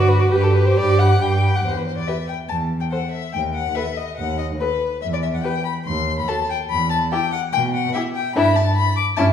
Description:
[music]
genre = quick classical-period movement for string quartet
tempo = 143 BPM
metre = 4/4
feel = rubato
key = E minor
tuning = A4 = 440 Hz
[part]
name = rich violin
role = melody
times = 0.0-9.2 s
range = B4 to D6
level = -24 LUFS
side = left 7 dB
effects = none
[part]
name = rich violin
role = second line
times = 0.0-9.3 s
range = E4 to G5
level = -24 LUFS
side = left 3 dB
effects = none
[part]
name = warm viola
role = accompaniment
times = 0.0-9.3 s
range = C#4 to A4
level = -23 LUFS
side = right 2 dB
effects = none
[part]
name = warm cello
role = bass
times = 0.0-9.3 s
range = D#2 to B2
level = -21 LUFS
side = right 1 dB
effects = none
[sound]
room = wet recital hall reverb, RT60 1.3 s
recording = heard from further back in the room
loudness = -18 LUFS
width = side -9 dB against mid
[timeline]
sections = 0.0-1.6 A section; 1.6-9.3 B section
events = none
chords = 0.0 G; 1.6 N.C.; 3.3 B/D#; 5.0 Em; 5.9 D#(b5, no3); 6.7 Em; 8.4 Em7/G

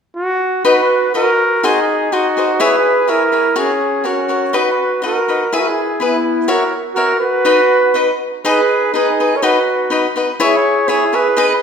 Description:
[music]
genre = mexican folk, mariachi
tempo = 124 BPM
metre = 2/4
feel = rubato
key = B major, G# minor from 8.4 s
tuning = A4 = 440 Hz
[part]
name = mellow trumpet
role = melody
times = 0.2-11.6 s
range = E4 to C#5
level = -15 LUFS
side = equal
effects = none
[part]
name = cavaquinho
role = accompaniment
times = 0.6-11.5 s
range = D#4 to F#5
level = -17 LUFS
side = left 3 dB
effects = none
[part]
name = mellow trumpet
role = second line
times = 0.7-11.6 s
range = B3 to A#4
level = -19 LUFS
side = right 3 dB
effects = none
[sound]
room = wet recital hall reverb, RT60 1.4 s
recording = minimal, uncompressed stereo recording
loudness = -12 LUFS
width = side -6 dB against mid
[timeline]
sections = 0.7-8.4 A section; 8.4-11.6 B section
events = none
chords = 0.0 N.C.; 0.7 B; 1.6 G#7; 2.6 C#m; 3.6 F#; 4.5 B; 5.5 E; 6.5 F#7; 7.4 B; 8.4 G#m; 9.4 B; 10.4 C#m

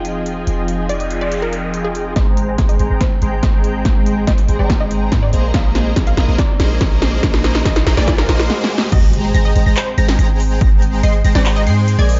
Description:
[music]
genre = future bass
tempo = 142 BPM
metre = 4/4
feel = half-time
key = unclear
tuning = A4 = 438 Hz
[part]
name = airy breathy pad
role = sustained chords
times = 0.0-12.2 s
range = F3 to G5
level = -32 LUFS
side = equal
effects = none
[part]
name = supersaw chords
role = riff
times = 0.0-12.2 s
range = F3 to C6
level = -24 LUFS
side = equal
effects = analog chorus, sidechain pumping, low-pass filter
[part]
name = warm 808-style bass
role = bass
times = 0.0-12.2 s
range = F1 to Ab2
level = -19 LUFS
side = equal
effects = sidechain pumping
[part]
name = big-room dance drum kit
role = drums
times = 0.0-12.2 s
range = crash cymbal, handclaps, hi-hat, snare drum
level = -24 LUFS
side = equal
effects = overdrive
[part]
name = noise sweep, riser and impact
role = sound effects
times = 1.0-10.6 s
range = none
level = -32 LUFS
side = equal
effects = none
[part]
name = unison pluck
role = melody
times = 0.9-12.2 s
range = Ab4 to F5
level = -28 LUFS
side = equal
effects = sidechain pumping, delay
[part]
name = electronic kick drum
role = drums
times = 2.2-10.7 s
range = none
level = -19 LUFS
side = equal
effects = overdrive
[part]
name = unison pluck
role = arpeggios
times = 8.9-12.2 s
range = Ab6 to C7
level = -30 LUFS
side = equal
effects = sidechain pumping
[sound]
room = light reverb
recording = dark, warm production, nothing above 7.6 kHz, faint mains hum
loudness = -15 LUFS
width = mono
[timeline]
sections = 0.0-2.2 A section; 2.2-8.9 B section; 8.9-12.2 C section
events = noise sweep 1.0-2.2; build-up 2.2-8.9; drum fill 2.2-8.5, 8.5-8.9; filter sweep on supersaw synth 2.2-8.9; filter sweep on synth pluck 2.2-8.9; drop 8.9-12.2; impact 8.9-10.6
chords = 0.0 Fm7; 2.2 Abmaj7; 5.3 Bb9sus4; 8.9 Abmaj7

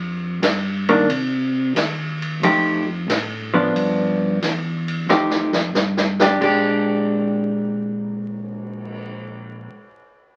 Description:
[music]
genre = soul jazz organ trio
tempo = 90 BPM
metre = 4/4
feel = swing 68% on 8ths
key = Bb mixolydian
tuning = A4 = 439 Hz
[part]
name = mellow tonewheel organ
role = bass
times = 0.0-9.7 s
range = Bb1 to C3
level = -28 LUFS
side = equal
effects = slow rotary speaker
[part]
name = swinging big-band drum kit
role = drums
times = 0.4-9.0 s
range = crash cymbal, cymbal swell, hi-hat, kick drum, ride cymbal, snare drum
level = -26 LUFS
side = equal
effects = none
[part]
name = vintage hollow-body jazz guitar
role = accompaniment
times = 0.9-9.7 s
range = Eb3 to G4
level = -21 LUFS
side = equal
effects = none
[sound]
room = wet club reverb, RT60 0.6 s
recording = very old 78 rpm record, vinyl crackle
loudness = -20 LUFS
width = mono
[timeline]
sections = 0.0-6.4 A section; 6.4-9.1 B section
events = drum fill 5.1-6.4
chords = 0.0 Fsus2; 1.1 Cm; 2.4 F9; 3.8 G7; 5.1 F9; 6.4 Bb6

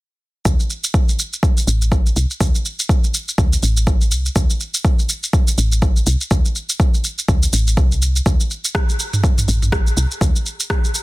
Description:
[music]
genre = afro house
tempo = 123 BPM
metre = 4/4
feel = swing 58% on 16ths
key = unclear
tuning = A4 = 436 Hz
[part]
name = woody FM bass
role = bass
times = 0.5-10.3 s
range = A1 to D2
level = -18 LUFS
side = equal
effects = sidechain pumping
[part]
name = afro-pop drum kit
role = drums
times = 0.5-11.0 s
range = rim click, shaker, toms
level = -22 LUFS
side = right 1 dB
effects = small room ambience, soft clipping on snare
[part]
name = electronic kick drum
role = drums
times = 0.5-10.8 s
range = none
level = -16 LUFS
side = equal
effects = overdrive, small room ambience
[sound]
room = little or no reverb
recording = dense, heavily limited modern master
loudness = -15 LUFS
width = side -20 dB against mid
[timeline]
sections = 0.5-11.0 A section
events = none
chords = none

